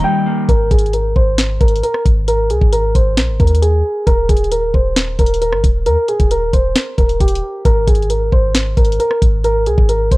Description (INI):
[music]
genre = hip hop, trap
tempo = 134 BPM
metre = 4/4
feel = half-time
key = Ab major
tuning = A4 = 440 Hz
[part]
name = dark concert grand piano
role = melody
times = 0.0-10.2 s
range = G4 to G5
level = -17 LUFS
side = right 1 dB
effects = low-pass filter, tape echo
[part]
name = electric guitar through a small old amp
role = accompaniment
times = 0.0-0.5 s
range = Eb3 to Eb5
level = -17 LUFS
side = left 1 dB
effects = spring reverb
[part]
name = mellow flute section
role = sustained chords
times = 0.0-0.5 s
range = Eb4 to G5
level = -38 LUFS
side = left 1 dB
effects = none
[part]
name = clean 808-style bass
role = bass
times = 0.0-10.2 s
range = Eb1 to Eb2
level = -17 LUFS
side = equal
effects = none
[part]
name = trap drum kit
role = drums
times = 0.5-10.2 s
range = hi-hat, kick drum, rim click, snare drum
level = -14 LUFS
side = equal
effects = none
[sound]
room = little or no reverb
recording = dry, gritty hardware recording, cassette tape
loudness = -12 LUFS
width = side -20 dB against mid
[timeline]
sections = 0.5-10.2 A section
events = break 0.0-0.5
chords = 0.5 Ab; 4.1 Eb5; 7.7 N.C.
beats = 0.04 | 0.49 0.94 1.38 1.83 | 2.28 2.73 3.17 3.62 | 4.07 4.52 4.96 5.41 | 5.86 6.31 6.76 7.20 | 7.65 8.10 8.55 8.99 | 9.44 9.89